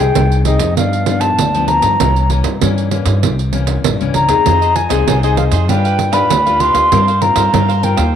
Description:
samba and choro; 98 BPM; 4/4; straight; A4 = 440 Hz
wooden flute; melody; 0.0-8.1 s; Eb5 to C6; -15 LUFS; equal
nylon-string guitar; accompaniment; 0.0-8.1 s; G2 to B4; -19 LUFS; left 11 dB
upright bass; bass; 0.0-8.2 s; Bb1 to G2; -16 LUFS; equal
pandeiro; percussion; 0.2-8.1 s; -19 LUFS; right 10 dB
cavaquinho; accompaniment; 4.5-8.1 s; D4 to F5; -23 LUFS; right 10 dB
moderate spring reverb, RT60 1.4 s, small room ambience; 1960s-style stereo with parts hard left and right; -11 LUFS; side -9 dB against mid
0.0-8.2 A section
0.0 Fm7; 0.8 G7; 2.0 C7b9; 4.5 Fm7; 5.7 G7; 6.9 C7sus4/G
0.16 0.77 1.39 | 2.00 2.62 3.23 3.84 | 4.46 5.07 5.69 6.30 | 6.92 7.53 8.15

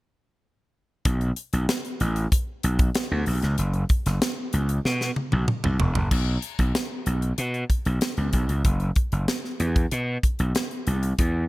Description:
polished 1980s jazz-funk pop; 95 BPM; 4/4; straight; B minor; A4 = 440 Hz
gritty slap bass; bass; 1.1-11.4 s; E1 to B2; -23 LUFS; equal; overdrive
tight funk drum kit; drums; 1.1-11.3 s; crash cymbal, hi-hat, kick drum, snare drum, toms; -25 LUFS; equal; gated reverb
little or no reverb; -22 LUFS; side -19 dB against mid
1.1-6.1 A section; 6.1-11.5 B section
drum fill 4.8-6.1
| 1.05 1.69 2.32 2.95 | 3.58 4.21 4.85 5.48 | 6.11 6.75 7.38 8.02 | 8.65 9.28 9.92 10.55 | 11.18

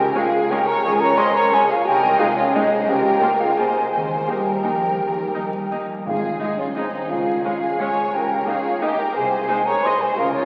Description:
classical; 158-190 BPM; 3/4; rubato; Ab major; A4 = 439 Hz
warm studio violin section; melody; 0.0-10.4 s; F4 to Eb5; -35 LUFS; equal
mellow hollow silver concert flute; second line; 0.0-10.4 s; C5 to C6; -23 LUFS; equal
rich studio violin section; second line; 0.0-10.4 s; Eb4 to Eb5; -28 LUFS; equal
mellow French horn section; sustained chords; 0.0-10.4 s; C4 to C5; -27 LUFS; equal
mellow tuba; bass; 0.0-10.4 s; Ab1 to Eb2; -37 LUFS; equal
rich studio cello section; bass; 0.0-10.4 s; Ab2 to G3; -35 LUFS; equal
warm studio double bass section; bass; 0.0-10.4 s; Ab1 to Eb2; -43 LUFS; equal
clear studio viola section; accompaniment; 0.2-9.9 s; Ab3 to F4; -31 LUFS; equal
timpani; percussion; 6.1-6.6 s; Ab2; -38 LUFS; equal
wet cathedral reverb, RT60 4.9 s; very old 78 rpm record, vinyl crackle; -20 LUFS; mono
0.0-10.4 A section
0.0 Db; 1.9 Ab/C; 2.9 Bbm/Db; 3.9 Eb; 6.1 Ab; 7.1 Db; 8.1 Eb7/Db; 9.2 Ab/C
0.16 0.51 | 0.84 1.18 1.53 | 1.86 2.19 2.55 | 2.88 3.21 3.57 | 3.91 4.27 4.64 | 4.99 5.34 5.71 | 6.06 6.41 6.77 | 7.10 7.45 7.81 | 8.14 8.47 8.83 | 9.16 9.49 9.85 | 10.18

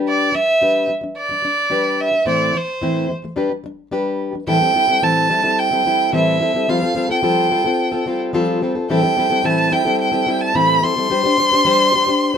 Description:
pop; 109 BPM; 4/4; straight; A4 = 437 Hz
fingerpicked plugged-in steel-string acoustic guitar; accompaniment; 0.0-12.4 s; A2 to C5; -19 LUFS; left 2 dB
warm violin; melody; 0.1-12.4 s; C5 to C6; -16 LUFS; right 1 dB
moderate studio reverb, RT60 0.5 s; minimal, uncompressed stereo recording, faint mains hum; -15 LUFS; side -8 dB against mid
0.0-4.5 A section; 4.5-12.4 B section
0.0 G; 2.3 Am; 3.4 G; 4.5 Am7; 6.7 Fadd9; 8.9 Am7; 11.1 Gsus4
| 0.06 0.61 1.17 1.72 | 2.27 2.82 3.37 3.92 | 4.48 5.03 5.58 6.13 | 6.68 7.24 7.79 8.34 | 8.89 9.45 10.00 10.55 | 11.10 11.65 12.21

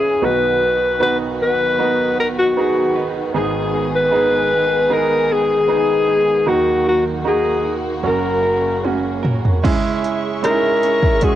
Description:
pop ballad; 76 BPM; 4/4; straight; B major; A4 = 440 Hz
clear alto saxophone; melody; 0.0-11.4 s; F#4 to B4; -16 LUFS; left 2 dB; cassette tape
bright concert grand piano; accompaniment; 0.0-11.4 s; F#1 to G#4; -21 LUFS; right 6 dB; cassette tape
rich studio string section; sustained chords; 0.0-11.4 s; C#3 to C#6; -27 LUFS; left 2 dB; cassette tape
direct-recorded clean electric guitar; arpeggios; 0.0-11.4 s; G#2 to B4; -28 LUFS; right 8 dB; cassette tape
punchy analog drum machine; drums; 8.8-11.4 s; crash cymbal, hi-hat, kick drum, rim click, toms; -18 LUFS; equal; cassette tape
small room ambience; home recording on cassette; -15 LUFS; side -12 dB against mid
0.0-9.6 A section; 9.6-11.4 B section
drum fill 8.8-9.6
0.2 B; 3.4 G#m; 6.5 D#m; 8.1 F#; 9.6 C#m
| 0.23 1.01 1.80 2.57 | 3.35 4.13 4.91 5.69 | 6.48 7.26 8.05 8.85 | 9.65 10.44 11.23

